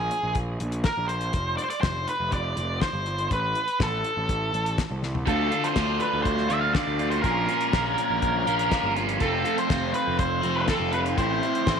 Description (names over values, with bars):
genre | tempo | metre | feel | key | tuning
psychedelic rock | 122 BPM | 4/4 | straight | unclear | A4 = 442 Hz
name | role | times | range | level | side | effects
octave-fuzz lead guitar | melody | 0.0-11.8 s | G#4 to F5 | -27 LUFS | equal | distortion, tape echo
fuzz picked electric bass | bass | 0.0-11.8 s | F1 to D2 | -29 LUFS | right 1 dB | overdrive
damped 70s drum kit | drums | 0.1-11.8 s | hi-hat, kick drum, snare drum, toms | -28 LUFS | left 2 dB | none
overdriven electric guitar | riff | 5.3-11.8 s | A2 to F4 | -26 LUFS | right 1 dB | phaser
room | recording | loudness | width
light reverb, small room ambience | 1960s-style stereo | -23 LUFS | side -6 dB against mid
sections
0.0-11.8 A section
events
drum fill 5.0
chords
0.0 G#sus2/A#; 1.3 Fsus2; 3.3 Am; 5.3 Dm; 7.2 Bbm; 9.2 F; 11.2 Am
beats
0.36 0.85 | 1.34 1.83 2.32 2.82 | 3.31 3.80 4.29 4.78 | 5.27 5.76 6.26 6.75 | 7.24 7.73 8.22 8.72 | 9.21 9.70 10.19 10.68 | 11.18 11.67